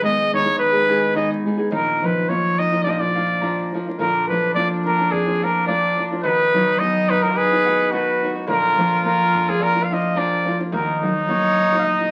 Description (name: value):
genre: mexican folk, mariachi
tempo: 106 BPM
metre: 4/4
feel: swing 55% on 8ths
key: unclear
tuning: A4 = 439 Hz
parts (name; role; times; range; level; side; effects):
- clear trumpet; melody; 0.0-12.1 s; Ab4 to F5; -21 LUFS; equal; none
- flamenco guitar; accompaniment; 0.0-12.1 s; Ab2 to Ab4; -30 LUFS; equal; none
- concert harp; arpeggios; 0.0-12.1 s; D3 to Cb6; -27 LUFS; equal; none
- upright bass; bass; 0.0-12.1 s; Bb1 to F#2; -40 LUFS; equal; none
- clear trumpet; second line; 4.0-12.1 s; D4 to Ab4; -26 LUFS; equal; none
room: moderate studio reverb, RT60 0.7 s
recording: very old 78 rpm record, vinyl crackle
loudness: -19 LUFS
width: mono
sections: 0.0-12.1 A section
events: none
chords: 0.0 Abm; 1.7 Bbsus4; 2.8 Bb; 6.2 B; 8.5 Bb; 10.7 Ebm